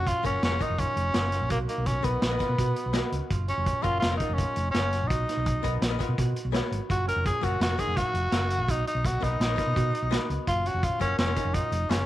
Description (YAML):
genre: progressive instrumental, band music in an uneven meter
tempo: 167 BPM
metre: 5/4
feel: straight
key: F# major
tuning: A4 = 440 Hz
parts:
  - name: raspy tenor saxophone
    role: melody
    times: 0.0-12.1 s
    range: A#3 to A#4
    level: -28 LUFS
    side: equal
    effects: none
  - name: Celtic harp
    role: arpeggios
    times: 0.0-12.1 s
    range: C#4 to E#5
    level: -38 LUFS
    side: right 11 dB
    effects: none
  - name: hollow-body short-scale fingered electric bass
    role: bass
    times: 0.0-12.1 s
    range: E#1 to B2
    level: -29 LUFS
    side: equal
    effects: none
  - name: vintage drum kit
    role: drums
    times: 0.1-12.0 s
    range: hi-hat, kick drum, snare drum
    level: -30 LUFS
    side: equal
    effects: none
  - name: archtop guitar, miked and amplified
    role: accompaniment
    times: 0.2-12.1 s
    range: F#3 to G#5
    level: -36 LUFS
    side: left 12 dB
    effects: none
room: light reverb, studio reverb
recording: 1960s-style stereo with parts hard left and right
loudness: -24 LUFS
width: side -14 dB against mid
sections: 0.0-12.1 A section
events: hollow-body jazz guitar fill 2.8-3.3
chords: 0.0 F#maj7; 1.5 Bmaj7; 3.3 F#maj7; 5.1 Bmaj7; 6.9 F#maj7; 8.7 Bmaj7; 10.5 F#maj7